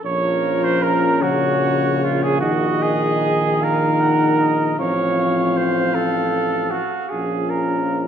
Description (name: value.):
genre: classical, hymn-like piece for brass band.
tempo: 51 BPM (dotted quarters).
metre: 6/8.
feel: rubato.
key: Bb minor.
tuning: A4 = 440 Hz.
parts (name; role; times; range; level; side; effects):
warm flugelhorn; melody; 0.0-8.0 s; Bb4 to Gb5; -27 LUFS; left 8 dB; none.
warm flugelhorn; second line; 0.0-8.0 s; F4 to Db5; -20 LUFS; right 4 dB; none.
mellow euphonium; accompaniment; 0.0-8.1 s; C4 to Eb4; -25 LUFS; left 4 dB; none.
mellow euphonium; accompaniment; 0.0-8.1 s; Db3 to F3; -24 LUFS; equal; none.
warm tuba; bass; 0.0-8.1 s; A1 to Bb1; -25 LUFS; left 1 dB; none.
room: wet concert hall reverb, RT60 1.8 s.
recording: dark, warm production.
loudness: -16 LUFS.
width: side -8 dB against mid.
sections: 0.0-8.1 A section.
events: none.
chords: 0.0 Bbm; 2.4 Gb69/Bb; 4.8 F/A; 7.1 Bbm.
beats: | 0.03 1.21 | 2.42 3.62 | 4.79 5.96 | 7.12.